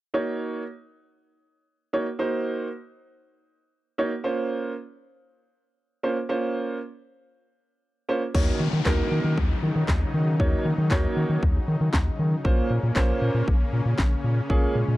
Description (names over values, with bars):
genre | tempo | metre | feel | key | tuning
dance-pop | 117 BPM | 4/4 | straight | unclear | A4 = 444 Hz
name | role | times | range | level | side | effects
warm grand piano | accompaniment | 0.1-14.7 s | Bb3 to Db5 | -26 LUFS | right 2 dB | sidechain pumping
supersaw pad | sustained chords | 8.3-15.0 s | Db3 to Eb4 | -32 LUFS | left 2 dB | sidechain pumping
round analog bass | bass | 8.3-15.0 s | Bb1 to Eb3 | -24 LUFS | equal | sidechain pumping
house drum kit | drums | 8.3-14.6 s | crash cymbal, handclaps, kick drum, snare drum | -24 LUFS | equal | overdrive
downlifter | sound effects | 8.3-12.4 s | none | -36 LUFS | left 3 dB | none
room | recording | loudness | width
digital ambience | dry, close 1970s-style studio recording | -22 LUFS | side -17 dB against mid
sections
0.1-8.3 A section; 8.3-15.0 B section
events
none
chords
0.1 Ebm7; 4.2 Bbmadd9; 8.3 Ebm7; 12.4 Bbmadd9